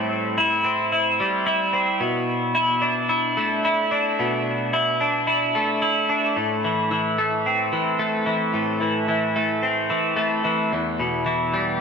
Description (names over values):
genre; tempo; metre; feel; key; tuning
rock; 110 BPM; 4/4; straight; A minor; A4 = 435 Hz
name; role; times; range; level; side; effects
twelve-string electric guitar; solo; 0.0-11.8 s; E2 to E4; -19 LUFS; equal; lush chorus, tape echo
room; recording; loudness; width
wet plate reverb, RT60 2.7 s; dreamy mix soaked in reverb; -19 LUFS; side -6 dB against mid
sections
0.0-6.4 A section; 6.4-11.8 B section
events
none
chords
0.0 Am7; 2.0 E7sus4/B; 6.4 Am; 10.7 Em